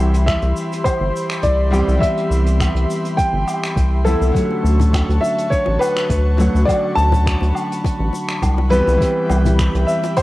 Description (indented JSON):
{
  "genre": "sunset chillout",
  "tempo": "103 BPM",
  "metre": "4/4",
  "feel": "swing 53% on 16ths",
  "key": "unclear",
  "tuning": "A4 = 440 Hz",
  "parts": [
    { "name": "warm concert grand piano", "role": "melody", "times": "0.0-10.2 s", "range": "A4 to A5", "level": "-21 LUFS", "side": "left 1 dB", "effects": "cassette tape, analog delay" },
    { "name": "nylon-string guitar", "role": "accompaniment", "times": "0.0-10.2 s", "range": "D3 to G4", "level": "-22 LUFS", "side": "equal", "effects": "auto-pan, cassette tape" },
    { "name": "airy breathy pad", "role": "sustained chords", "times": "0.0-10.2 s", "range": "F#4 to C#6", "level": "-29 LUFS", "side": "equal", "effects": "chorus, cassette tape" },
    { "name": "round analog bass", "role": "bass", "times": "0.0-9.9 s", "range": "G1 to D2", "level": "-16 LUFS", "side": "equal", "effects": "none" },
    { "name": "soft brush drum kit", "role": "drums", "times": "0.1-10.2 s", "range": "finger snaps, hi-hat, shaker, woodblock", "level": "-28 LUFS", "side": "equal", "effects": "cassette tape" },
    { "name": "electronic kick drum", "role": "drums", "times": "0.3-10.2 s", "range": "none", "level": "-20 LUFS", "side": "equal", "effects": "overdrive, cassette tape" },
    { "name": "bongos and congas", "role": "percussion", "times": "4.5-10.1 s", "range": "none", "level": "-26 LUFS", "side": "left 5 dB", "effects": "none" }
  ],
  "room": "light reverb",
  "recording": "home recording on cassette",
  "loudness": "-15 LUFS",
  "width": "side -18 dB against mid",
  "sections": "0.0-10.2 A section",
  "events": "none",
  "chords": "0.0 Cmaj7; 4.3 Dmaj7; 8.7 Cmaj7"
}